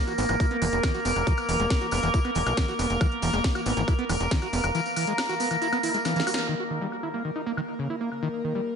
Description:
psychedelic trance; 138 BPM; 4/4; straight; A4 = 440 Hz
overtone-sweeping drone; sustained chords; 0.0-8.8 s; Bb3 to Bb4; -27 LUFS; equal; chorus, built-in reverb, sidechain pumping
overdriven acid bass; riff; 0.1-8.6 s; Db3 to Gb4; -30 LUFS; right 1 dB; auto-pan, sidechain pumping, tape echo
techno drum kit; drums; 0.1-8.2 s; hi-hat, snare drum, woodblock; -33 LUFS; left 1 dB; low-pass filter on hats, low-pass filter on cymbals, low-pass filter on perc, low-pass filter on snare, low-pass filter on room
tambourine; percussion; 0.1-6.5 s; -38 LUFS; right 2 dB
tight sequencer bass; bass; 0.2-4.7 s; E1 to B1; -28 LUFS; equal
electronic kick drum; drums; 0.4-4.4 s; -24 LUFS; equal
moderate plate reverb, RT60 1.1 s; dreamy mix soaked in reverb, nothing above 10.9 kHz; -23 LUFS; side -6 dB against mid
0.0-6.5 A section; 6.5-8.8 B section
drop 0.0-6.5; drum fill 6.1-6.5; band accent 6.3
0.0 E5; 6.5 Eb5
0.40 0.83 | 1.27 1.70 2.14 2.57 | 3.01 3.44 3.88 4.31 | 4.75 5.18 5.62 6.05 | 6.49 6.92 7.36 7.79 | 8.23 8.66

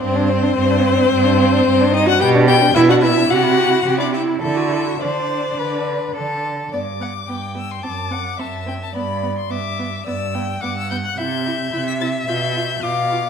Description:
quick classical-period movement for string quartet; 108 BPM; 4/4; straight; G major; A4 = 441 Hz
rich violin; melody; 0.0-13.3 s; C5 to B6; -22 LUFS; left 8 dB
rich violin; second line; 0.0-13.3 s; B3 to A5; -23 LUFS; left 3 dB
rich viola; accompaniment; 0.0-13.2 s; B3 to G4; -20 LUFS; right 2 dB
rich cello; bass; 0.0-13.3 s; F#2 to D3; -22 LUFS; right 5 dB
wet recital hall reverb, RT60 1.4 s; -16 LUFS; side -7 dB against mid
0.0-6.7 A section; 6.7-13.3 B section
0.0 Gsus4; 2.2 Em9/B; 3.3 C; 4.4 D5; 6.7 G; 7.9 D7/F#; 9.0 G; 11.2 C; 12.3 G7/B
| 0.01 0.56 1.11 1.66 | 2.20 2.75 3.30 3.85 | 4.42 5.00 5.58 6.16 | 6.73 7.29 7.85 8.41 | 8.96 9.52 10.07 10.63 | 11.18 11.73 12.28 12.83

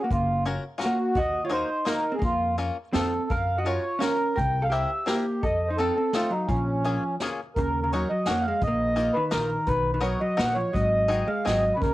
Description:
musette waltz; 169 BPM; 3/4; straight; Bb minor, Eb minor from 7.6 s; A4 = 440 Hz
mellow accordion; melody; 0.0-11.9 s; Db4 to G5; -26 LUFS; equal; cassette tape, plate reverb
vintage hollow-body jazz guitar; second line; 0.0-11.9 s; Db3 to Bb4; -30 LUFS; right 1 dB; cassette tape
upright bass; bass; 0.1-11.9 s; Gb1 to Gb2; -30 LUFS; equal
vintage brush drum kit; drums; 0.1-11.9 s; hi-hat, kick drum, snare drum; -32 LUFS; equal; cassette tape
bluegrass banjo; accompaniment; 0.5-11.6 s; Bb3 to Bb4; -32 LUFS; left 3 dB; cassette tape, plate reverb
moderate studio reverb, RT60 0.5 s; home recording on cassette; -23 LUFS; side -16 dB against mid
0.0-7.6 A section; 7.6-11.9 B section
0.1 Gbmaj7; 1.2 Ebm; 2.2 Bbm/F; 2.9 F7; 3.3 Gbmaj7; 4.4 C7; 5.4 F7; 6.5 Bbm7; 7.6 Ebm7; 8.6 Bbsus4; 9.7 Bmaj7; 10.7 Ab7
| 0.10 0.45 0.80 | 1.15 1.51 1.86 | 2.22 2.58 2.94 | 3.30 3.66 4.01 | 4.37 4.72 5.07 | 5.43 5.78 6.13 | 6.48 6.84 7.20 | 7.56 7.92 8.27 | 8.63 8.98 9.33 | 9.68 10.03 10.38 | 10.74 11.10 11.46 | 11.81

